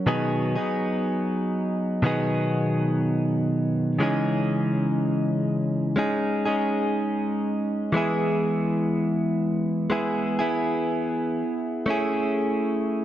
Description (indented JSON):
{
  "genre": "pop",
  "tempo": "61 BPM",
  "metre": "4/4",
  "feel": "straight",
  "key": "unclear",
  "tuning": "A4 = 441 Hz",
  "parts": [
    { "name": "direct-recorded clean electric guitar", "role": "solo", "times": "0.0-13.0 s", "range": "B2 to G#4", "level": "-22 LUFS", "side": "equal", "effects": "none" }
  ],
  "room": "light reverb, digital ambience",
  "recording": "dark, warm production",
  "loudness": "-22 LUFS",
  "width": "side -12 dB against mid",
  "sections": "0.0-4.0 A section; 4.0-13.0 B section",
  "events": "none",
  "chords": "0.1 B6; 4.0 C#madd9; 7.9 E; 11.9 Amaj7",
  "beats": "| 0.07 1.05 2.04 3.02 | 4.00 4.99 5.97 6.96 | 7.94 8.92 9.91 10.89 | 11.87 12.86"
}